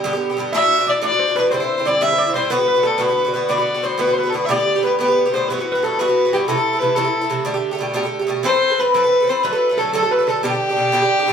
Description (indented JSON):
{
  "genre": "celtic folk, Celtic slide",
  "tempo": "121 BPM (dotted quarters)",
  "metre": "12/8",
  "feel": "straight",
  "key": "G major",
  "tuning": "A4 = 442 Hz",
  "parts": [
    { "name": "Irish bouzouki", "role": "accompaniment", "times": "0.0-11.3 s", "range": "G2 to B4", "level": "-21 LUFS", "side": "right 1 dB", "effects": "none" },
    { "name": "dark fiddle", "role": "melody", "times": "0.5-11.3 s", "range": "G4 to E5", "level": "-17 LUFS", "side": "left 2 dB", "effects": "none" },
    { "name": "steel pan", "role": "second line", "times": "0.5-11.3 s", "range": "G4 to E5", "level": "-24 LUFS", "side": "right 3 dB", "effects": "none" }
  ],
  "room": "wet studio reverb, RT60 0.9 s",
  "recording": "band playing live in one room",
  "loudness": "-15 LUFS",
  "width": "side -7 dB against mid",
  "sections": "0.0-11.3 A section",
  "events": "none",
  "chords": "0.0 G; 0.5 Dadd9; 1.5 Cadd9; 2.5 D6; 4.5 Gadd9; 5.5 Emadd9; 6.5 Am; 7.5 Gadd9; 8.5 Amadd9; 9.4 D; 10.4 G"
}